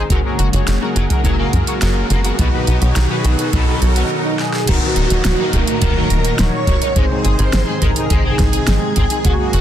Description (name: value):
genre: synthwave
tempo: 105 BPM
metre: 4/4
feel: straight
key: Eb minor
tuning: A4 = 440 Hz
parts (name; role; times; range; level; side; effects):
- brassy analog pad; sustained chords; 0.0-9.6 s; Bb2 to Ab4; -23 LUFS; right 1 dB; chorus, sidechain pumping
- analog synth brass; stabs; 0.0-9.6 s; Ab2 to Db5; -23 LUFS; left 3 dB; chorus, digital delay
- tight sequencer bass; bass; 0.0-9.6 s; Eb1 to Gb2; -16 LUFS; equal; sidechain pumping
- riser, swell and downlifter; sound effects; 0.0-9.2 s; none; -25 LUFS; right 3 dB; none
- overdriven electric guitar; riff; 0.1-9.6 s; B2 to Ab4; -28 LUFS; left 2 dB; ensemble chorus, tape echo
- kick drum; drums; 0.1-9.4 s; none; -18 LUFS; equal; none
- pop drum kit; drums; 0.1-9.6 s; crash cymbal, hi-hat, snare drum; -23 LUFS; right 1 dB; overdrive, high-pass filter on hats, high-pass filter on snare, high-pass filter on cymbals, high-pass filter on room
- expressive portamento lead; melody; 4.4-9.6 s; Gb4 to Db5; -22 LUFS; right 2 dB; ensemble chorus, tape echo
- string machine, violins; second line; 4.7-9.6 s; Gb4 to Db5; -28 LUFS; right 1 dB; ensemble chorus, digital delay
room: light reverb, digital ambience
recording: dense, heavily limited modern master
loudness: -13 LUFS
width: side -11 dB against mid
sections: 0.0-4.7 A section; 4.7-9.6 B section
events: riser 0.0-4.1; filter sweep on analog synth pad 0.0-4.7; swell 3.5-4.7; break 4.1-4.7; drum fill 4.4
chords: 0.1 Gbadd9; 2.4 B; 4.7 Ebm; 7.0 Ab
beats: | 0.10 0.68 1.25 1.82 | 2.39 2.96 3.53 4.10 | 4.67 5.25 5.82 6.39 | 6.96 7.53 8.10 8.68 | 9.25